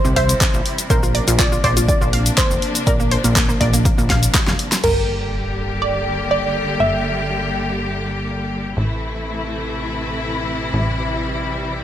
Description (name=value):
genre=progressive house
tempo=122 BPM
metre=4/4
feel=straight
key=G dorian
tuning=A4 = 441 Hz
part: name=wide unison pluck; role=melody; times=0.0-8.5 s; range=Bb4 to E5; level=-22 LUFS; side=right 1 dB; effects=tape echo
part: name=clear studio string section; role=sustained chords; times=0.0-11.8 s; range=C3 to G4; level=-24 LUFS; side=left 1 dB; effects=sidechain pumping
part: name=analog pluck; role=arpeggios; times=0.0-4.7 s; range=Bb3 to F5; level=-24 LUFS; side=equal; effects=chorus, cassette tape, sidechain pumping, tape echo
part: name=plucky analog bass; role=bass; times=0.0-11.8 s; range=F1 to C2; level=-22 LUFS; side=equal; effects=sidechain pumping
part: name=deep house drum kit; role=drums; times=0.0-4.9 s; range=crash cymbal, handclaps, hi-hat, shaker, snare drum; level=-21 LUFS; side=equal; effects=small room ambience
part: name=electronic kick drum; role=drums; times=0.2-4.4 s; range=none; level=-19 LUFS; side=equal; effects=small room ambience
part: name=sub drop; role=sound effects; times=4.8-6.8 s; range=none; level=-28 LUFS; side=equal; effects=none
room=light reverb, digital ambience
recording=none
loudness=-16 LUFS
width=side -11 dB against mid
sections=0.0-4.8 A section; 4.8-11.8 B section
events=drum fill 4.1-4.8; impact 4.8-6.8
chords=0.0 C; 0.9 Bbadd9; 4.8 Gm; 8.8 Am